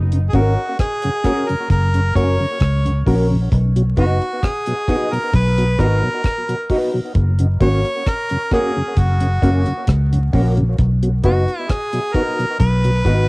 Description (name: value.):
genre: roots reggae.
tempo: 66 BPM.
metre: 4/4.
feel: straight.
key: B major.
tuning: A4 = 440 Hz.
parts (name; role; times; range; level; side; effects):
vintage muted fingered electric bass; bass; 0.0-13.3 s; F#1 to C#2; -16 LUFS; equal; none.
mellow tonewheel organ; accompaniment; 0.1-13.1 s; F#2 to F#4; -24 LUFS; equal; overdrive, chorus vibrato, slow rotary speaker, cassette tape, dub echo.
deep reggae drum kit; drums; 0.1-13.3 s; hi-hat, kick drum, rim click; -20 LUFS; equal; cassette tape.
clear harmonica; melody; 0.3-13.3 s; F#4 to C#5; -22 LUFS; equal; cassette tape, dub echo.
mellow electric guitar; accompaniment; 0.3-13.2 s; C#4 to D#5; -24 LUFS; right 1 dB; ensemble chorus, cassette tape, dub echo.
warm upright piano; stabs; 0.3-13.3 s; A#3 to A#4; -24 LUFS; left 2 dB; cassette tape.
room: little or no reverb.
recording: home recording on cassette, vinyl crackle.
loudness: -15 LUFS.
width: side -26 dB against mid.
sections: 0.0-13.3 A section.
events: none.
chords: 0.0 F#; 3.5 B; 7.2 F#; 10.8 B.